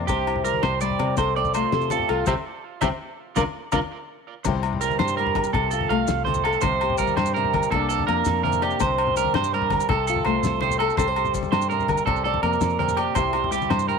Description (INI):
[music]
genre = highlife guitar band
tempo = 110 BPM (dotted quarters)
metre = 12/8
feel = straight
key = C mixolydian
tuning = A4 = 441 Hz
[part]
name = flamenco guitar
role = accompaniment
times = 0.0-14.0 s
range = C3 to D5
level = -26 LUFS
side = left 9 dB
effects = none
[part]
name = fingered electric bass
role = bass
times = 0.0-14.0 s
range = C2 to C3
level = -29 LUFS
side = equal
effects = none
[part]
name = electric guitar at the edge of break-up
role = arpeggios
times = 0.1-14.0 s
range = F4 to F5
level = -24 LUFS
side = right 12 dB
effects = vibrato effect, tape echo
[part]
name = cloth-damped thuddy drum kit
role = drums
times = 0.1-14.0 s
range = crash cymbal, hi-hat, kick drum, snare drum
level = -30 LUFS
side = left 3 dB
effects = none
[part]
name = agogo bells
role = percussion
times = 0.1-13.9 s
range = none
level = -31 LUFS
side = left 11 dB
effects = none
[part]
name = congas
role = percussion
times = 0.1-14.0 s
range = none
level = -31 LUFS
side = left 5 dB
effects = none
[part]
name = maracas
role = percussion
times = 0.1-13.9 s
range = none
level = -38 LUFS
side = left 13 dB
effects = none
[sound]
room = light reverb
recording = 1960s-style stereo with parts hard left and right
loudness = -20 LUFS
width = side -5 dB against mid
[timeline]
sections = 0.0-4.5 A section; 4.5-14.0 B section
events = band accent 2.3-4.5; drum fill 3.4-4.5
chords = 0.1 C; 1.2 F/C; 2.3 C; 3.4 Bb/C; 4.5 C; 5.5 F/C; 6.6 C5; 7.7 Bb/C; 8.8 C5; 9.9 F/C; 11.0 C5; 12.1 Bb/C; 13.2 C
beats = | 0.09 0.63 1.18 1.73 | 2.27 2.82 3.36 3.91 | 4.45 5.00 5.54 6.09 | 6.63 7.17 7.72 8.26 | 8.81 9.35 9.89 10.44 | 10.98 11.53 12.07 12.62 | 13.16 13.70